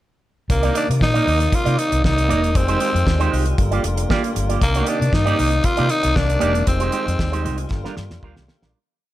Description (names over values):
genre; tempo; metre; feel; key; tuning
disco; 116 BPM; 4/4; straight; C minor; A4 = 440 Hz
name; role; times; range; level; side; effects
growling tenor saxophone; melody; 0.5-7.7 s; Bb3 to F4; -21 LUFS; left 1 dB; none
electric guitar with an envelope filter; accompaniment; 0.5-8.8 s; G3 to Eb5; -24 LUFS; right 6 dB; none
tonewheel organ; sustained chords; 0.5-8.7 s; C3 to D5; -28 LUFS; left 2 dB; overdrive, lush chorus
overdriven fingered electric bass; bass; 0.5-8.7 s; E1 to C3; -20 LUFS; equal; none
damped 70s drum kit; drums; 0.5-8.7 s; hi-hat, kick drum, snare drum; -23 LUFS; equal; none
room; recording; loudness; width
small room ambience; none; -16 LUFS; side -14 dB against mid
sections
0.5-8.7 verse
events
fade-out 6.7-8.7; drum fill 7.7-8.7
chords
0.5 Cm9; 2.5 Fm9; 3.6 Gm7; 4.6 Cm9; 6.7 Fm9; 7.7 Gm7